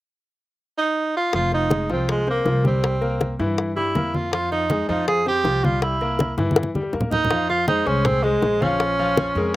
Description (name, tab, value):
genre	latin, salsa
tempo	161 BPM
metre	4/4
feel	straight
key	F minor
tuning	A4 = 440 Hz
part	clear tenor saxophone	melody	0.8-9.6 s	Ab3 to Ab4	-21 LUFS	right 2 dB	none
part	bright concert grand piano	accompaniment	1.3-9.6 s	E3 to F5	-26 LUFS	left 2 dB	none
part	upright bass	bass	1.3-9.6 s	F1 to G2	-26 LUFS	equal	none
part	bongos	percussion	1.3-9.5 s	none	-24 LUFS	left 4 dB	none
part	congas	percussion	1.3-9.6 s	none	-25 LUFS	left 1 dB	none
room	little or no reverb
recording	recorded outdoors, with no room sound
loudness	-19 LUFS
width	side -16 dB against mid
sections	0.0-1.3 A section; 1.3-7.3 B section; 7.3-9.6 C section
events	drum fill 6.4-7.3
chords	0.0 N.C.; 1.3 Fm7; 2.8 C7; 4.3 Fm7; 5.8 C7; 7.3 Fm; 8.8 Bbm7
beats	0.21 0.59 0.96 | 1.33 1.71 2.08 2.46 | 2.83 3.20 3.58 3.95 | 4.32 4.70 5.07 5.44 | 5.82 6.19 6.56 6.93 | 7.31 7.68 8.05 8.43 | 8.80 9.17 9.54